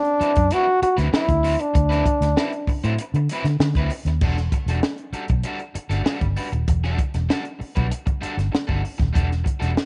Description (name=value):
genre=funk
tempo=97 BPM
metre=4/4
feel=straight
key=E minor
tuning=A4 = 440 Hz
part: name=warm trombone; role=melody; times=0.0-2.8 s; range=D4 to F#4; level=-22 LUFS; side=equal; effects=none
part: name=compact cocktail drum kit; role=drums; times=0.0-9.9 s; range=crash cymbal, hi-hat, kick drum, snare drum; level=-26 LUFS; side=equal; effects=none
part: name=crunchy overdriven guitar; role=accompaniment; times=0.2-9.8 s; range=F#3 to C5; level=-33 LUFS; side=equal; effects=tube saturation
part: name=vintage muted fingered electric bass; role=bass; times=0.2-9.7 s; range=D#1 to D3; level=-24 LUFS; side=equal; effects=none
room=light reverb, studio reverb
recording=nothing above 10.7 kHz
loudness=-22 LUFS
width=mono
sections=0.0-4.2 A section; 4.2-9.9 B section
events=none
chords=0.0 D13; 4.2 Em11